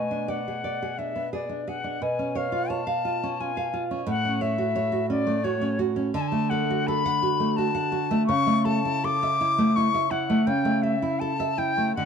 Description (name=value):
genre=romantic duo for flute and classical guitar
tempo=76-89 BPM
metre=3/4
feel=rubato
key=F# minor, A major from 6.1 s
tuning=A4 = 440 Hz
part: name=silver concert flute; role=melody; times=0.0-12.1 s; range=C#5 to D6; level=-27 LUFS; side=left 5 dB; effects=none
part: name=nylon-string guitar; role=accompaniment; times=0.0-12.1 s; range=A2 to F#5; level=-25 LUFS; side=right 2 dB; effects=none
room=moderate spring reverb, RT60 1.8 s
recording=dark, warm production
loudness=-23 LUFS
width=side -6 dB against mid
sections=0.0-12.1 A section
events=none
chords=0.0 G#dim/B; 2.0 C#7/B; 4.1 F#m/A; 6.1 D; 8.3 A/C#